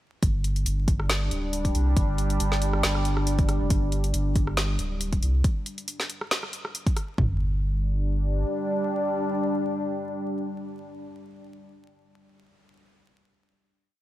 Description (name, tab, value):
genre	deep dubstep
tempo	138 BPM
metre	4/4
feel	swing 54% on 16ths, half-time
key	unclear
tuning	A4 = 440 Hz
part	deep dark ambient pad	sustained chords	0.7-11.3 s	G3 to D4	-29 LUFS	equal	chorus, built-in reverb
part	soft dub sub bass	bass	0.2-8.4 s	D1 to C2	-25 LUFS	equal	tube saturation
part	deep house drum kit	drums	0.2-7.3 s	kick drum, toms	-24 LUFS	equal	none
part	deep house drum kit	drums	0.2-7.1 s	hi-hat, rim click, snare drum	-29 LUFS	equal	none
room	little or no reverb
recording	vinyl crackle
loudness	-23 LUFS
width	side -14 dB against mid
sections	0.2-7.2 drop; 7.2-10.7 final chord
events	drop 0.2-7.2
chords	0.2 G5; 3.7 N.C.; 7.2 G5